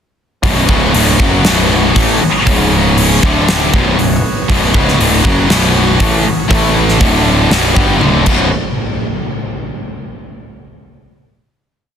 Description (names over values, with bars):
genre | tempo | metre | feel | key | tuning
hard rock | 119 BPM | 4/4 | straight | B dorian | A4 = 440 Hz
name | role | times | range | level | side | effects
pipe organ, trumpet | sustained chords | 0.4-8.5 s | A3 to E5 | -24 LUFS | right 3 dB | none
high-gain distorted guitar | riff | 0.4-8.5 s | B1 to A3 | -14 LUFS | left 10 dB | distortion
scooped high-gain guitar | riff | 0.4-8.5 s | B1 to A3 | -16 LUFS | right 13 dB | distortion
fuzz picked electric bass | bass | 0.4-8.5 s | B0 to A1 | -16 LUFS | equal | overdrive
huge arena drum kit | drums | 0.4-8.4 s | crash cymbal, hi-hat, kick drum, snare drum, toms | -14 LUFS | equal | none
room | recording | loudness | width
small room ambience | dense, heavily limited modern master | -9 LUFS | side -8 dB against mid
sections
0.4-8.5 riff; 8.5-10.5 final hit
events
drum fill 8.0-8.5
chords
0.4 Bm; 2.5 C#5; 3.2 D5; 3.7 Bm; 6.5 A5; 7.0 D5; 7.5 Bm; 8.0 D5; 8.3 B5; 8.5 N.C.